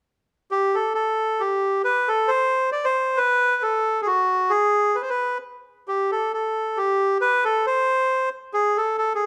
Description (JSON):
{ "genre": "musette", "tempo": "135 BPM", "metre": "3/4", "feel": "straight", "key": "A minor", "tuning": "A4 = 441 Hz", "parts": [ { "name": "bandoneon", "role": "solo", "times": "0.5-9.3 s", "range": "F#4 to D5", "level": "-22 LUFS", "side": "equal", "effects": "none" } ], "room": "moderate recital hall reverb, RT60 1.5 s", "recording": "none", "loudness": "-22 LUFS", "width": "mono", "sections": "0.5-9.3 A section", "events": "none", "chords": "none" }